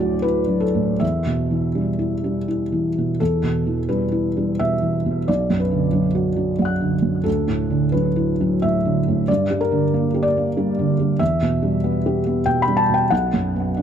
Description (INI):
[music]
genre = neoclassical minimalist piano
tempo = 76-95 BPM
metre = 3/4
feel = rubato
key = E minor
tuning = A4 = 440 Hz
[part]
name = felt-muted upright piano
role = solo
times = 0.0-13.8 s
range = B1 to F#6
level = -18 LUFS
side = equal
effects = none
[sound]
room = little or no reverb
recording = close, detailed microphones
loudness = -18 LUFS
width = side -8 dB against mid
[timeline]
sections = 0.0-3.2 A section; 3.2-13.8 B section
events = none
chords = 0.0 Dadd9; 1.0 Em; 5.3 Bm; 7.3 Dadd9; 9.3 Gm; 11.2 Em; 13.1 B5